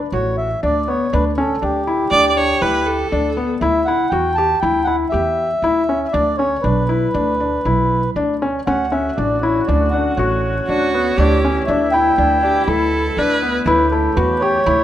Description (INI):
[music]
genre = contemporary instrumental, chamber music in an uneven meter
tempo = 120 BPM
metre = 5/4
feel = straight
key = D major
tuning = A4 = 440 Hz
[part]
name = felt-muted upright piano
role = arpeggios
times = 0.0-14.8 s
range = B3 to G4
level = -19 LUFS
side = left 3 dB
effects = none
[part]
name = upright bass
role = bass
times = 0.0-14.8 s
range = A1 to E2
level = -22 LUFS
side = right 2 dB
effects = none
[part]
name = mellow accordion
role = melody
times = 0.1-14.8 s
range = G4 to A5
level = -19 LUFS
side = right 1 dB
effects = none
[part]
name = clear viola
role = second line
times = 2.1-3.5, 10.7-13.6 s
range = F#4 to D5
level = -19 LUFS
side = right 3 dB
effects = none
[part]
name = mellow woodwind section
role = sustained chords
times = 8.7-14.8 s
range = B2 to G4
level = -26 LUFS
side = left 1 dB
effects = none
[sound]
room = light reverb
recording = none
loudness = -15 LUFS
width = side -12 dB against mid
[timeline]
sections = 0.0-14.8 A section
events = none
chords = 0.0 Dmaj7; 1.1 Gsus2/D; 3.6 Dsus2; 6.1 E5; 8.7 Dmaj7; 11.2 G69/D; 13.7 A7/D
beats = 0.12 0.62 | 1.12 1.62 2.12 2.62 3.11 | 3.61 4.11 4.62 5.12 5.62 | 6.13 6.63 7.14 7.64 8.15 | 8.66 9.17 9.68 10.18 10.68 | 11.18 11.68 12.18 12.68 13.17 | 13.67 14.17 14.66